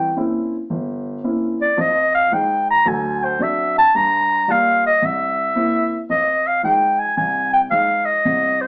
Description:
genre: jazz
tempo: 111 BPM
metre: 4/4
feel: swing 67% on 8ths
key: F minor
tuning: A4 = 442 Hz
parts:
  - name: growling clarinet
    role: melody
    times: 0.0-8.7 s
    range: C5 to Bb5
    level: -15 LUFS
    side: equal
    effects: none
  - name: dark grand piano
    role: accompaniment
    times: 0.0-8.7 s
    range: G1 to F4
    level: -23 LUFS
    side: equal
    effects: none
room: wet small room reverb, RT60 0.6 s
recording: band playing live in one room, small speaker sound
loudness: -15 LUFS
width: side -26 dB against mid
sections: 0.0-6.1 A section; 6.1-8.7 B section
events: clarinet solo 0.0-6.1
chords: 0.0 C7b9; 1.8 Fm7; 2.9 D7; 3.9 Gm7; 5.0 C7; 6.1 Fm7

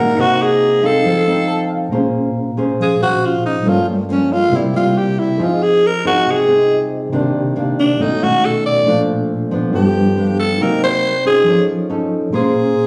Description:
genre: bossa nova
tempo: 138 BPM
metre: 4/4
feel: straight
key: Bb minor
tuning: A4 = 440 Hz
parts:
  - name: growling alto saxophone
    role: melody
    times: 0.0-12.9 s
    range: A3 to D5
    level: -17 LUFS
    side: equal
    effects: plate reverb
  - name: hollow silver concert flute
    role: second line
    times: 0.0-1.7 s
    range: Eb5 to Gb5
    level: -26 LUFS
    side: equal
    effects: none
  - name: nylon-string guitar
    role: accompaniment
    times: 0.0-12.9 s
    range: G2 to C5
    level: -20 LUFS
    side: equal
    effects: none
  - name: tine electric piano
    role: accompaniment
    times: 0.0-12.9 s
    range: Bb2 to C6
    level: -25 LUFS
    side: equal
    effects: none
room: wet studio reverb, RT60 0.7 s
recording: studio reverb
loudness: -16 LUFS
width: mono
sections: 0.0-1.9 A section; 1.9-12.9 B section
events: tine electric piano fill 1.3-1.9; alto saxophone solo 1.9-12.9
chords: 0.2 Cm7b5; 1.1 F7; 1.9 Bbm9; 3.7 Gm7b5; 4.5 C7; 5.4 Fm7; 7.1 Cm9; 8.0 B9; 8.9 Bbmaj7; 9.7 G7; 10.6 Cm7b5; 11.5 Faug7; 12.3 Bbm9

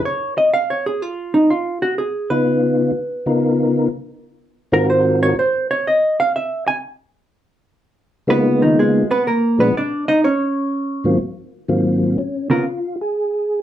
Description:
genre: jazz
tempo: 124 BPM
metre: 4/4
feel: swing 68% on 8ths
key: Db mixolydian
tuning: A4 = 440 Hz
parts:
  - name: hollow-body jazz guitar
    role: accompaniment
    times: 0.0-12.6 s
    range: Db3 to Ab5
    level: -17 LUFS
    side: right 1 dB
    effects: none
  - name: percussive tonewheel organ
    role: melody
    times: 2.3-5.3, 8.3-13.6 s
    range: Ab2 to Bb4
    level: -17 LUFS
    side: left 1 dB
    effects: slow rotary speaker, chorus vibrato, plate reverb
room: wet club reverb, RT60 0.5 s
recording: heard from further back in the room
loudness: -16 LUFS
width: side -11 dB against mid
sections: 0.0-12.2 A section; 12.2-13.6 B section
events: hollow-body jazz guitar solo 0.0-12.2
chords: 0.0 Gb5 (rootless); 0.5 Db9; 4.4 Ab13; 6.3 N.C.; 8.3 Db13; 9.3 Bb(b9); 10.2 N.C.; 11.2 Ab13; 12.2 Db6

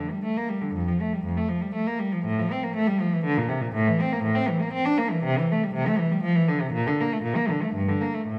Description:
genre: classical, baroque-style suite movement for unaccompanied cello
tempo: 120 BPM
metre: 3/4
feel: rubato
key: unclear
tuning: A4 = 439 Hz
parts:
  - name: clear cello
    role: solo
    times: 0.0-8.4 s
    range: F2 to D4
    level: -25 LUFS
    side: equal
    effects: none
room: wet recital hall reverb, RT60 1.3 s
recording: dark, warm production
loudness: -25 LUFS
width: mono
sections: 0.0-8.4 A section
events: none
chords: none

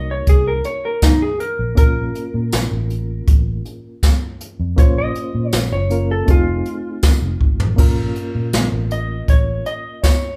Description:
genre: straight-eighth soul blues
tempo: 80 BPM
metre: 4/4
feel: straight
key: Bb harmonic minor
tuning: A4 = 440 Hz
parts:
  - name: clean lap steel guitar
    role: melody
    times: 0.0-10.4 s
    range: Eb4 to Eb5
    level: -25 LUFS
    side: equal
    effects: none
  - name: barky reed electric piano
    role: accompaniment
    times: 0.0-10.4 s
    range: A3 to C5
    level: -29 LUFS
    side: equal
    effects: overdrive, fast tremolo
  - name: vintage muted fingered electric bass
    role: bass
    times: 0.0-9.6 s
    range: F1 to Bb2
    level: -24 LUFS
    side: equal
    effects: none
  - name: jazz brush drum kit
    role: drums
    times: 0.3-10.2 s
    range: crash cymbal, hi-hat, kick drum, snare drum, tambourine, toms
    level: -17 LUFS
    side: equal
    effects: none
room: light reverb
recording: band playing live in one room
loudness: -18 LUFS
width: mono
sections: 0.0-7.8 A section; 7.8-10.4 B section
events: electric slide guitar solo 0.0-7.8; drum fill 7.4-7.8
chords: 0.0 Ebm; 1.8 Bbm; 6.3 F7#9; 7.8 Bbm

